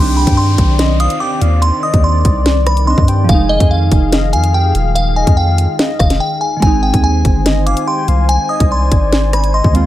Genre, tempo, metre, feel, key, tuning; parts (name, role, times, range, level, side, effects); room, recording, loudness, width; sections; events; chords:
hip hop, drill; 144 BPM; 4/4; half-time; C minor; A4 = 439 Hz
delicate synth tine bell; melody; 0.0-9.9 s; Eb5 to Eb6; -18 LUFS; equal; chorus, ping-pong delay
soft octave-layered synth lead; second line; 0.0-9.9 s; D5 to Ab5; -22 LUFS; left 5 dB; chorus, ping-pong delay
glassy digital keys; accompaniment; 0.0-9.9 s; Eb3 to F4; -21 LUFS; right 3 dB; chorus
dark analog pad; sustained chords; 0.0-9.9 s; Eb3 to Ab5; -23 LUFS; left 2 dB; chorus
long sustained 808-style bass; bass; 0.0-9.9 s; Eb1 to G2; -14 LUFS; equal
downlifter; sound effects; 0.0-3.3 s; -29 LUFS; equal
drill drum kit; drums; 0.3-9.8 s; hi-hat, kick drum, rim click, snare drum; -14 LUFS; equal
little or no reverb; -10 LUFS; side -14 dB against mid
0.0-9.9 A section
break 6.2-6.6
0.0 Cmadd9; 3.3 Fm7; 6.6 Ab